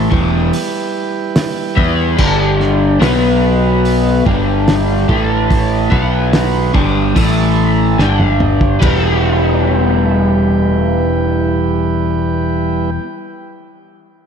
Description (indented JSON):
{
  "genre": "psychedelic rock",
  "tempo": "72 BPM",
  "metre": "4/4",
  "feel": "straight",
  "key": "E minor",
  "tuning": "A4 = 440 Hz",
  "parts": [
    { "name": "combo organ", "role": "sustained chords", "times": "0.0-12.9 s", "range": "E3 to A5", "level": "-20 LUFS", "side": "right 5 dB", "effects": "none" },
    { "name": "crunchy overdriven guitar", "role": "riff", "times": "0.0-13.0 s", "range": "E2 to E4", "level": "-15 LUFS", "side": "left 2 dB", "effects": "flanger" },
    { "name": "growling picked electric bass", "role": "bass", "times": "0.0-13.0 s", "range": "E1 to E2", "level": "-17 LUFS", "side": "equal", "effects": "overdrive" },
    { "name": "cloth-damped thuddy drum kit", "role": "drums", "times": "0.1-9.0 s", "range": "crash cymbal, hi-hat, kick drum, ride cymbal, snare drum, toms", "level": "-18 LUFS", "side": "equal", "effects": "none" }
  ],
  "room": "moderate lush hall reverb, RT60 2.9 s",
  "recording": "dreamy mix soaked in reverb",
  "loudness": "-11 LUFS",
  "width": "side -7 dB against mid",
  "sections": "0.0-8.8 A section; 8.8-12.1 B section",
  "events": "drum fill 8.0-8.8",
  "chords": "0.1 Em; 2.2 G5; 3.0 B5; 4.3 G5; 5.1 A5; 5.9 B5; 6.7 G5; 7.2 A5; 8.0 G5; 8.8 Em"
}